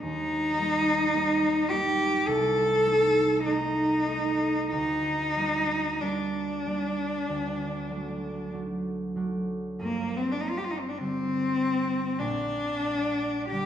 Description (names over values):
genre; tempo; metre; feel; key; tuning
classical, romantic duo for cello and harp; 44-55 BPM; 4/4; rubato; G minor; A4 = 438 Hz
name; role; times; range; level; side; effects
rich cello; melody; 0.0-13.7 s; Bb3 to A4; -26 LUFS; left 1 dB; none
concert harp; accompaniment; 0.0-13.7 s; G1 to Eb4; -30 LUFS; right 2 dB; none
room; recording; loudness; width
wet recital hall reverb, RT60 1.7 s; recorded in a church or concert hall; -25 LUFS; side -10 dB against mid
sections
0.0-9.8 A section; 9.8-13.7 B section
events
none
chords
0.0 Eb; 2.3 Adim/C; 4.7 Gm/D; 7.3 D; 9.8 G5; 12.2 Gm/Bb